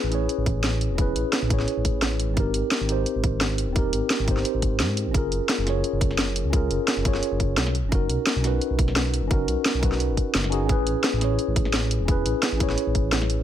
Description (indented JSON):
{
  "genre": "liquid drum and bass",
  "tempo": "173 BPM",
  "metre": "4/4",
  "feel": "straight",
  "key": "unclear",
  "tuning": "A4 = 440 Hz",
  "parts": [
    { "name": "mellow tine electric piano", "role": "accompaniment", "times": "0.0-13.4 s", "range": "B#3 to C#5", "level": "-26 LUFS", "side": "equal", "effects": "medium stereo tremolo, tape echo" },
    { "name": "dark detuned saw bass", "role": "bass", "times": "0.0-13.4 s", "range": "D#1 to G#2", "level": "-26 LUFS", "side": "equal", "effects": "tube saturation" },
    { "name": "drum and bass drum kit", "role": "drums", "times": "0.1-13.4 s", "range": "hi-hat, snare drum", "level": "-26 LUFS", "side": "equal", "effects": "none" },
    { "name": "electronic kick drum", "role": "drums", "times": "0.5-13.0 s", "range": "none", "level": "-23 LUFS", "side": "equal", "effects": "none" }
  ],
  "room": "light reverb, digital ambience",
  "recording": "none",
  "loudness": "-21 LUFS",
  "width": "side -11 dB against mid",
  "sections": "0.0-13.4 A section",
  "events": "none",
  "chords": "0.0 Amaj9; 2.4 G#maj9; 5.1 F#maj9; 7.7 Bmaj9; 10.7 Amaj9"
}